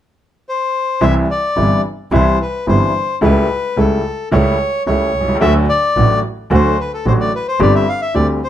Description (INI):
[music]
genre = tango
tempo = 109 BPM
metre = 4/4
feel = rubato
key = C major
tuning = A4 = 441 Hz
[part]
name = bandoneon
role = melody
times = 0.5-8.5 s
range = A4 to F5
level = -18 LUFS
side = left 3 dB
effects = none
[part]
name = bright upright piano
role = accompaniment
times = 1.0-8.4 s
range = G1 to G4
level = -16 LUFS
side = equal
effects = none
[part]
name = bright double bass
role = bass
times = 1.0-8.4 s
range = G1 to D2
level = -16 LUFS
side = right 2 dB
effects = none
[sound]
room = light reverb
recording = close, detailed microphones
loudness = -13 LUFS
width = side -11 dB against mid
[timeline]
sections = 0.0-1.0 A section; 1.0-8.5 B section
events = none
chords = 0.0 N.C.; 1.0 C; 3.2 A7/C#; 5.4 D; 7.6 Gsus4